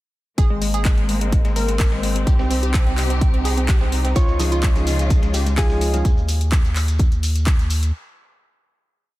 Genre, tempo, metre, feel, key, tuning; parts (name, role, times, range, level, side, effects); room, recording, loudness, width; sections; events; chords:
progressive house; 127 BPM; 4/4; straight; A4 = 436 Hz
warm studio string section; sustained chords; 0.4-6.0 s; C3 to G4; -28 LUFS; left 2 dB; sidechain pumping
glassy wavetable pluck; arpeggios; 0.4-6.0 s; Ab3 to Bb4; -26 LUFS; equal; chorus, sidechain pumping, tape echo
round analog bass; bass; 0.4-7.9 s; Ab1 to Eb2; -21 LUFS; equal; sidechain pumping
dusty soul sampler-style drum kit; drums; 0.4-5.9 s; hi-hat, snare drum; -39 LUFS; left 1 dB
electronic kick drum; drums; 0.4-7.6 s; -17 LUFS; equal
house drum kit; drums; 0.4-7.9 s; handclaps, hi-hat; -29 LUFS; left 1 dB; sidechain pumping on hats
dark baby grand piano; melody; 4.2-6.0 s; F4 to Db5; -30 LUFS; left 1 dB; tape echo
soft round pluck; second line; 4.2-6.0 s; Ab5 to Db6; -35 LUFS; equal; chorus, sidechain pumping, tape echo
shekere; percussion; 4.2-7.9 s; -35 LUFS; right 2 dB
felt-muted upright piano; stabs; 4.4-6.0 s; F3 to F5; -28 LUFS; right 1 dB; sidechain pumping, tape echo
digital ambience; dense, heavily limited modern master; -16 LUFS; side -18 dB against mid
0.4-7.9 drop
drop 0.4-7.9
0.4 Abadd9; 2.3 Cm; 4.2 Dbadd9; 6.0 N.C.